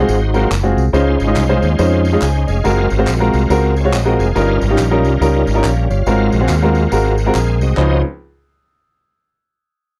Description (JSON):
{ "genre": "uptempo gospel", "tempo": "140 BPM", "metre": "4/4", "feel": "swing 61% on 8ths", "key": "Db major", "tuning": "A4 = 440 Hz", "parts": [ { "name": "warm upright piano", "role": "accompaniment", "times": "0.0-8.0 s", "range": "Db2 to Ab5", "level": "-18 LUFS", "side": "equal", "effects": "none" }, { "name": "bright tonewheel organ", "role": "sustained chords", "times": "0.0-8.0 s", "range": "F3 to Gb5", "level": "-24 LUFS", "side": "equal", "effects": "slow rotary speaker, overdrive, chorus vibrato" }, { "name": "fingered electric bass", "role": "bass", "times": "0.0-8.0 s", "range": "F1 to F2", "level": "-18 LUFS", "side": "equal", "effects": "none" }, { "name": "tambourine and handclaps", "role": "percussion", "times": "0.1-8.0 s", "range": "none", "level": "-32 LUFS", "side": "equal", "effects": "none" } ], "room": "little or no reverb", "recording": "dry, close 1970s-style studio recording", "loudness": "-15 LUFS", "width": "mono", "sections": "0.9-7.8 A section; 7.8-9.5 B section", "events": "none", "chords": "0.0 Ab13; 0.9 Dbmaj9; 2.6 Gbmaj9#11; 4.4 Eb9/G; 6.1 Ab13; 7.8 Dbmaj9" }